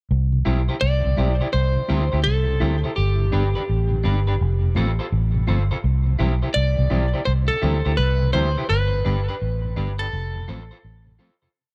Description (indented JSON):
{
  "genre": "reggae",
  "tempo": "84 BPM",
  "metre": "4/4",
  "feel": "swing 65% on 16ths",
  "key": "unclear",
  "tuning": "A4 = 441 Hz",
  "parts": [
    { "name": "vintage muted fingered electric bass", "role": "bass", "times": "0.1-11.2 s", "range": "F1 to D2", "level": "-22 LUFS", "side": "equal", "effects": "none" },
    { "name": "mellow tonewheel organ", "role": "accompaniment", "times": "0.3-11.5 s", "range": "F2 to E4", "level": "-32 LUFS", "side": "equal", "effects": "chorus vibrato, stopped rotary speaker, dub echo" },
    { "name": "electric guitar through a small old amp", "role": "accompaniment", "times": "0.5-11.5 s", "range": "D4 to C5", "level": "-32 LUFS", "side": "equal", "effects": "dub echo" },
    { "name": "clean electric guitar", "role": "melody", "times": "0.8-11.1 s", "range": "G4 to D5", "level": "-28 LUFS", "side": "equal", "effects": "dub echo" }
  ],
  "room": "little or no reverb",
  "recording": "none",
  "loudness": "-21 LUFS",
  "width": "mono",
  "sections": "0.1-11.5 verse",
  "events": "fade-out 8.7-11.5",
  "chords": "0.1 C; 3.0 G; 4.4 F; 5.8 C; 8.7 G; 10.1 F"
}